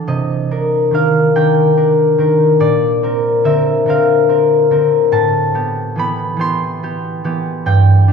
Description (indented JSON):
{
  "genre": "classical, solo harp piece",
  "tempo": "48 BPM (dotted quarters)",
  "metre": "6/8",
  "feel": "rubato",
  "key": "unclear",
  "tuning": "A4 = 440 Hz",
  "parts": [
    { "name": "concert harp", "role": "solo", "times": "0.0-8.1 s", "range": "G2 to C6", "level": "-12 LUFS", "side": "left 1 dB", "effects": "none" }
  ],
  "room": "wet recital hall reverb, RT60 1.6 s",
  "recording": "recorded in a church or concert hall",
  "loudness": "-12 LUFS",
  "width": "side -6 dB against mid",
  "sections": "0.0-8.1 A section",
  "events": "none",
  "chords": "0.1 Cm9; 2.6 A#add9; 5.1 Am9",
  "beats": "| 0.06 1.35 | 2.60 3.86 | 5.11 6.39 | 7.65"
}